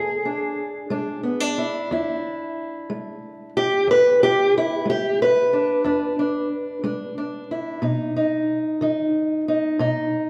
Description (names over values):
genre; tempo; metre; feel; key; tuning
acoustic country blues, solo or duo; 61 BPM (dotted quarters); 12/8; straight; E mixolydian; A4 = 440 Hz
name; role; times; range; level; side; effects
fingerpicked steel-string acoustic guitar; solo; 0.0-10.3 s; E2 to B4; -22 LUFS; equal; none
room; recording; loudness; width
wet recital hall reverb, RT60 1.9 s; recorded in a church or concert hall; -22 LUFS; mono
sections
0.0-10.3 A section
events
none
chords
0.0 E7; 7.8 B